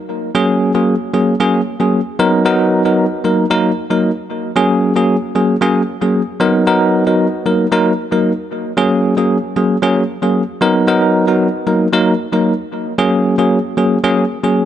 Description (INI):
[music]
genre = afrobeats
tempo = 114 BPM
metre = 4/4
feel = straight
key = F# major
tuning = A4 = 440 Hz
[part]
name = bell-like tine electric piano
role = solo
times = 0.3-14.7 s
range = F#3 to A#4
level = -12 LUFS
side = equal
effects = medium stereo tremolo, analog delay
[sound]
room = light reverb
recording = echo-heavy mix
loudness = -12 LUFS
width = side -10 dB against mid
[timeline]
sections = 0.4-8.8 A section; 8.8-14.7 B section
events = none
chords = 0.4 F#add9; 2.2 Bmaj7; 3.2 D#m; 4.6 F#add9; 6.4 Bmaj7; 7.5 D#m; 8.8 F#add9; 10.6 Bmaj7; 11.7 D#m; 13.0 F#add9